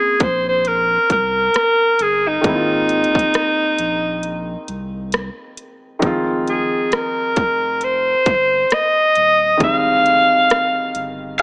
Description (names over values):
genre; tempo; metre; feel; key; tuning
contemporary R&B; 67 BPM; 4/4; swing 58% on 16ths; F minor; A4 = 439 Hz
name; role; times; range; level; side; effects
clear alto saxophone; melody; 0.0-11.4 s; Eb4 to F5; -18 LUFS; equal; none
felt-muted upright piano; accompaniment; 0.0-11.4 s; Eb3 to F4; -27 LUFS; equal; none
warm sub bass; bass; 0.2-11.4 s; Eb1 to C2; -34 LUFS; equal; none
trap drum kit; drums; 0.2-11.4 s; hi-hat, kick drum, rim click; -22 LUFS; equal; none
room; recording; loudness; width
light reverb; small speaker sound; -17 LUFS; mono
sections
0.0-11.4 A section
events
break 4.2-6.0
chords
0.0 Bbm9; 2.4 Ab69; 6.0 Fm9